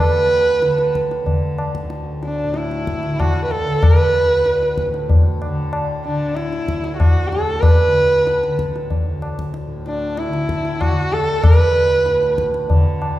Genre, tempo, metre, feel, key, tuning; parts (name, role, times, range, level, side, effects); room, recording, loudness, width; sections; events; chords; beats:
indian classical, Hindustani; 94 BPM; 3/4; straight; D raga bhupali; A4 = 440 Hz
warm sarangi; melody; 0.0-12.4 s; D4 to B4; -18 LUFS; right 2 dB
tanpura; drone; 0.0-13.2 s; D2 to D3; -25 LUFS; left 2 dB
tabla; percussion; 0.6-13.2 s; -17 LUFS; left 1 dB
wet recital hall reverb, RT60 1.6 s; recorded in a church or concert hall; -15 LUFS; side -14 dB against mid
0.0-13.2 A section
0.63 1.27 | 1.91 2.55 3.19 | 3.83 4.46 5.10 | 5.74 6.37 7.01 | 7.64 8.28 8.91 | 9.54 10.17 10.80 | 11.43 12.06 12.69